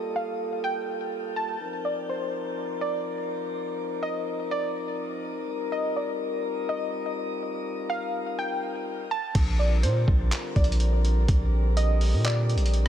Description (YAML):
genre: hip hop, atmospheric cloud-rap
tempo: 124 BPM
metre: 4/4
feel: half-time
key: Bb major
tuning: A4 = 441 Hz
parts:
  - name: mellow French horn section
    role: sustained chords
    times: 0.0-12.9 s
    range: D3 to Bb4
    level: -32 LUFS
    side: left 2 dB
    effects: sidechain pumping
  - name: warbly dusty pluck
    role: melody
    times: 0.2-12.9 s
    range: C5 to A5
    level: -31 LUFS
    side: right 1 dB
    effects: chorus, ping-pong delay
  - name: long sustained 808-style bass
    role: bass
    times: 9.3-12.9 s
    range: Bb1 to Bb2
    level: -22 LUFS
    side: equal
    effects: none
  - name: trip hop sampler-style drum kit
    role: drums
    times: 9.3-12.9 s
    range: crash cymbal, handclaps, hi-hat, kick drum, rim click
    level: -26 LUFS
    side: equal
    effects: none
room: light reverb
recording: none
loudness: -25 LUFS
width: side -10 dB against mid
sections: 0.0-9.3 A section; 9.3-12.9 B section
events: none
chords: 0.0 Gm9; 1.6 Cm11; 5.5 F9sus4; 9.3 Bb69